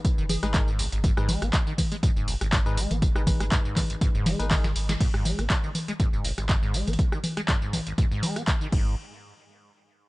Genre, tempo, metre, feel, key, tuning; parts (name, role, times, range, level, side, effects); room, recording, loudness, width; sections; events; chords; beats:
acid house; 121 BPM; 4/4; swing 54% on 16ths; G# minor; A4 = 436 Hz
bell-like tine electric piano; stabs; 0.0-4.7 s; D#4 to B4; -38 LUFS; left 4 dB; tape echo
booming analog drum machine; drums; 0.0-8.8 s; congas, crash cymbal, handclaps, hi-hat, rim click, snare drum, tambourine; -29 LUFS; equal
electronic kick drum; drums; 0.0-8.8 s; -24 LUFS; equal
acid bass, saw; riff; 0.2-9.0 s; G#1 to B3; -33 LUFS; equal; overdrive, lush chorus, sidechain pumping, tape echo
saturated sub bass; bass; 0.2-9.0 s; F#1 to G#1; -28 LUFS; equal; sidechain pumping
plucky unison lead; melody; 0.3-0.5 s; G#4; -40 LUFS; right 6 dB; wide subtle chorus, analog delay
little or no reverb; dry, gritty hardware recording, nothing above 10.3 kHz; -23 LUFS; side -21 dB against mid
0.0-5.0 A section; 5.0-9.0 B section; 9.0-10.1 C section
drop 0.0-5.0; drum fill 4.3-5.0; band accent 4.9
0.0 G#m; 5.0 N.C.
0.05 0.54 | 1.04 1.53 2.03 2.53 | 3.02 3.52 4.01 4.51 | 5.00 5.50 6.00 6.49 | 6.99 7.48 7.98 8.48